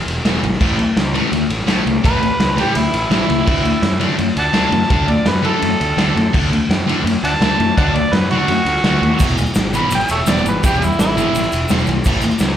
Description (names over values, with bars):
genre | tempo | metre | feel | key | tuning
garage rock duo or trio | 168 BPM | 4/4 | straight | unclear | A4 = 440 Hz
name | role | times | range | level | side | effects
fuzz picked electric bass | bass | 0.1-12.6 s | E1 to F#2 | -21 LUFS | equal | overdrive, tube saturation
raw garage drum kit | drums | 0.1-12.5 s | crash cymbal, kick drum, ride cymbal, snare drum | -18 LUFS | equal | none
thick fuzz guitar | riff | 0.2-12.2 s | E2 to D4 | -19 LUFS | left 1 dB | distortion
overdriven harmonica | melody | 2.1-11.7 s | E4 to B5 | -19 LUFS | right 1 dB | plate reverb, slapback echo
egg shaker | percussion | 9.2-12.5 s | none | -33 LUFS | left 1 dB | none
room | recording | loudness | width
light reverb | live gig heard through the venue's PA, club reverb | -13 LUFS | side -10 dB against mid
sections
0.0-12.6 A section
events
harmonica solo 0.0-12.6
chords
0.0 E; 0.6 A; 3.5 D; 9.2 E; 12.1 A